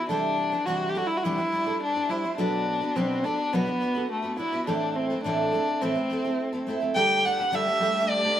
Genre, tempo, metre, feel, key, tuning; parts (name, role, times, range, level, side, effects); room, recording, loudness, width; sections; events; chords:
acoustic pop; 105 BPM; 4/4; straight; D mixolydian; A4 = 440 Hz
dark violin; melody; 0.0-8.4 s; A3 to G5; -25 LUFS; equal
picked steel-string acoustic guitar; accompaniment; 0.0-8.4 s; A2 to C5; -29 LUFS; equal
flamenco guitar; arpeggios; 0.1-8.4 s; A4 to D5; -35 LUFS; right 8 dB
warm studio string section; sustained chords; 6.9-8.4 s; A3 to G4; -34 LUFS; left 1 dB
moderate stone room reverb, RT60 1.1 s; band playing live in one room; -23 LUFS; side -10 dB against mid
0.0-7.0 A section; 7.0-8.4 B section
0.1 Cadd9; 2.4 Bm; 4.7 Am; 7.0 Dsus4